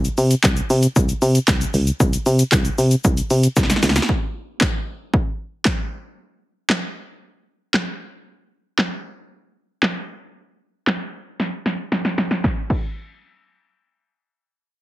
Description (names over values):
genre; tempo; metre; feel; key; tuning
dance-pop; 115 BPM; 4/4; straight; unclear; A4 = 438 Hz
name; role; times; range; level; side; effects
solid FM bass; bass; 0.0-4.0 s; C2 to C3; -17 LUFS; equal; sidechain pumping
punchy analog drum machine; drums; 0.0-12.8 s; crash cymbal, handclaps, hi-hat, kick drum, shaker, snare drum; -19 LUFS; equal; none
room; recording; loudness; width
little or no reverb; heavily compressed radio sound, multiband compression, low-pass filter; -18 LUFS; side -17 dB against mid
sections
0.0-4.1 A section; 4.1-12.4 B section; 12.4-14.8 C section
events
drum fill 3.6-4.1, 11.4-12.4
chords
none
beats
0.44 0.96 1.48 | 2.00 2.52 3.05 3.57 | 4.09 4.61 5.13 5.66 | 6.18 6.70 7.22 7.74 | 8.26 8.79 9.31 9.83 | 10.35 10.87 11.39 11.91 | 12.44